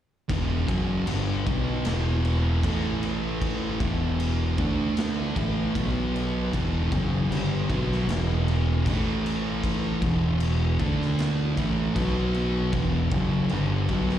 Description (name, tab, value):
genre	stoner and doom metal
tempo	77 BPM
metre	4/4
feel	straight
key	E minor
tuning	A4 = 439 Hz
part	thick fuzz guitar	riff	0.3-14.2 s	E2 to D4	-29 LUFS	left 7 dB	distortion, slapback echo
part	thick fuzz guitar	riff	0.3-14.2 s	E2 to D4	-28 LUFS	right 6 dB	distortion, slapback echo
part	growling fingered electric bass	bass	0.3-14.2 s	E1 to D2	-28 LUFS	equal	overdrive
part	raw garage drum kit	drums	0.3-14.2 s	crash cymbal, kick drum, snare drum	-32 LUFS	equal	none
room	light reverb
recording	live gig heard through the venue's PA, recital hall reverb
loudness	-23 LUFS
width	side -11 dB against mid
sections	0.3-14.2 A section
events	none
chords	0.3 Em; 2.6 A5; 3.8 E5; 4.6 D5; 5.4 A5; 5.7 B5; 6.5 Em; 8.9 A5; 10.0 E5; 10.8 D5; 11.6 A5; 12.0 B5; 12.7 Em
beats	| 0.29 1.07 1.85 2.63 | 3.41 4.19 4.97 5.75 | 6.52 7.30 8.08 8.85 | 9.63 10.40 11.18 11.96 | 12.73 13.50